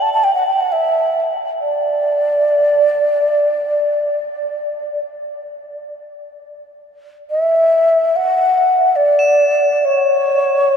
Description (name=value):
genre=world meditative, free-time meditation music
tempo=free time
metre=none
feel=none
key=unclear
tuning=A4 = 440 Hz
part: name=breathy mellow xiao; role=melody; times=0.0-10.8 s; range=C#5 to A5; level=-14 LUFS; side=equal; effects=tape echo
part: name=crotales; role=texture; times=0.0-10.8 s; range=E7 to A7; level=-28 LUFS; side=right 1 dB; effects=none
room=wet huge ambient reverb, RT60 8.0 s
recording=in a vast, echoing space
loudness=-13 LUFS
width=side -7 dB against mid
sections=0.0-10.8 A section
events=none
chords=none